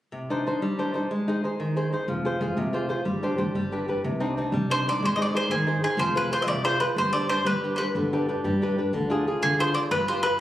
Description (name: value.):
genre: italian folk, Italian serenade.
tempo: 123 BPM (dotted quarters).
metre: 6/8.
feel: straight.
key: C harmonic minor.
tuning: A4 = 438 Hz.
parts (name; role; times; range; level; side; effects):
flamenco guitar; accompaniment; 0.1-10.4 s; C3 to C5; -26 LUFS; equal; none.
upright bass; bass; 2.1-10.2 s; F1 to D3; -31 LUFS; equal; none.
bowl-back mandolin; melody; 4.7-10.4 s; Ab4 to Eb5; -24 LUFS; equal; none.
room: moderate recital hall reverb, RT60 1.5 s.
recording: recorded on a phone in the room, club reverb.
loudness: -23 LUFS.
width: side -13 dB against mid.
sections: 0.1-4.0 A section; 4.0-10.4 B section.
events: none.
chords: 0.1 Cmadd9; 1.1 Ab; 2.1 Fm; 3.0 Gsus4; 3.5 G; 4.0 Cmadd9; 5.0 Ab; 6.0 Fm; 7.0 Gsus4; 7.5 G; 8.9 Ddim.